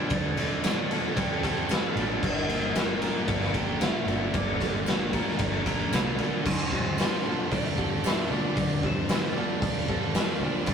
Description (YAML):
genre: rock, shoegaze and dream pop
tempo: 114 BPM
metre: 4/4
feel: straight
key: D minor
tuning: A4 = 439 Hz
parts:
  - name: electric guitar through a small old amp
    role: melody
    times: 0.0-10.7 s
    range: A4 to G5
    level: -38 LUFS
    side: right 2 dB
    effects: none
  - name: crunchy overdriven guitar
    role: riff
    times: 0.0-10.7 s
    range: G2 to Bb4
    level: -31 LUFS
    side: right 4 dB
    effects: none
  - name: thick fuzz guitar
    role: riff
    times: 0.0-10.7 s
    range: G2 to D4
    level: -34 LUFS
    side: left 4 dB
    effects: distortion
  - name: vintage muted picked electric bass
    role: bass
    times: 0.0-10.7 s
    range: G1 to D2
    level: -36 LUFS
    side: equal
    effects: none
  - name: raw garage drum kit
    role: drums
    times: 0.1-10.7 s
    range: crash cymbal, hi-hat, kick drum, ride cymbal, snare drum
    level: -27 LUFS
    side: equal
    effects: none
  - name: tambourine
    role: percussion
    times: 0.6-10.3 s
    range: none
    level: -43 LUFS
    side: left 6 dB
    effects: none
room: moderate booth ambience, RT60 0.2 s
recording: rough rehearsal-room recording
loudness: -24 LUFS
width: side -7 dB against mid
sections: 0.0-6.5 A section; 6.5-10.7 B section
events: none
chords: 0.0 Dm7; 2.2 Gm7; 6.5 Dm7